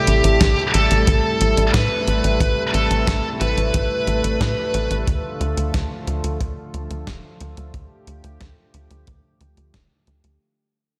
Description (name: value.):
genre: synthwave.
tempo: 90 BPM.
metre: 4/4.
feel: straight.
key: unclear.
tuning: A4 = 441 Hz.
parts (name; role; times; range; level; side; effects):
high-gain lead guitar; melody; 0.0-4.9 s; G4 to B4; -24 LUFS; equal; distortion, slapback echo, delay.
warm analog pad; sustained chords; 0.0-10.4 s; C3 to A4; -28 LUFS; equal; chorus, sidechain pumping.
tight sequencer bass; bass; 0.1-10.4 s; D1 to A2; -23 LUFS; equal; none.
clean 12-bit digital drum machine; drums; 0.1-10.4 s; hi-hat, snare drum; -29 LUFS; equal; studio reverb.
kick drum; drums; 0.4-9.9 s; none; -26 LUFS; equal; studio reverb.
room: moderate lush hall reverb, RT60 2.7 s.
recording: big arena sound.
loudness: -19 LUFS.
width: mono.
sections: 0.0-10.4 A section.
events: fade-out 0.0-10.4.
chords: 0.0 Am7; 5.1 Dm.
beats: 0.41 1.07 1.74 | 2.41 3.07 3.74 4.41 | 5.07 5.74 6.41 7.07 | 7.74 8.41 9.07 9.74.